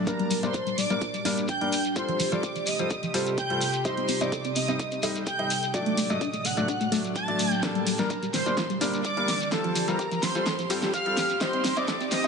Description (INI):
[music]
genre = progressive house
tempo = 127 BPM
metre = 4/4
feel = straight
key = G minor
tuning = A4 = 441 Hz
[part]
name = evolving wavetable pad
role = sustained chords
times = 0.0-12.3 s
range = A2 to G4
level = -33 LUFS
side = right 1 dB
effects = phaser, built-in reverb, sidechain pumping
[part]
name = felt-muted upright piano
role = stabs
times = 0.0-12.3 s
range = F#3 to Eb5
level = -31 LUFS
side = left 2 dB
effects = sidechain pumping, low-pass filter, digital delay
[part]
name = expressive synth lead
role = melody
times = 0.1-12.3 s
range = A4 to A5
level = -31 LUFS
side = equal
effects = analog chorus, cassette tape, sidechain pumping, digital delay
[part]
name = dark studio violin section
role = second line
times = 0.1-12.3 s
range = A5 to A6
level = -34 LUFS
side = right 2 dB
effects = sidechain pumping, digital delay
[part]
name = tight sequenced synth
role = arpeggios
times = 0.1-12.3 s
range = F3 to Bb4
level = -32 LUFS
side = left 1 dB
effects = chorus, phaser, cassette tape, sidechain pumping, digital delay
[part]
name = electronic kick drum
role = drums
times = 0.1-12.0 s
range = none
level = -34 LUFS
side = right 1 dB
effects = high-pass filter on kick
[part]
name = pop drum kit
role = drums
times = 0.1-12.3 s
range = hi-hat, snare drum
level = -32 LUFS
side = right 1 dB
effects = none
[part]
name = shekere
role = percussion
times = 0.1-12.3 s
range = none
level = -36 LUFS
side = left 2 dB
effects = none
[sound]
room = moderate lush hall reverb, RT60 2.2 s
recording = high-pass filter, nothing above 10.4 kHz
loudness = -24 LUFS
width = side -5 dB against mid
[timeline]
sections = 0.1-12.3 A section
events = build-up 0.1-12.3; filter sweep on synth arpeggio sound 0.1-12.3; drum fill 7.6-12.3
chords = 0.1 Gm; 2.0 Fadd9; 3.9 Cm; 5.7 D; 7.6 Gm; 9.5 Fadd9/A; 11.4 Cm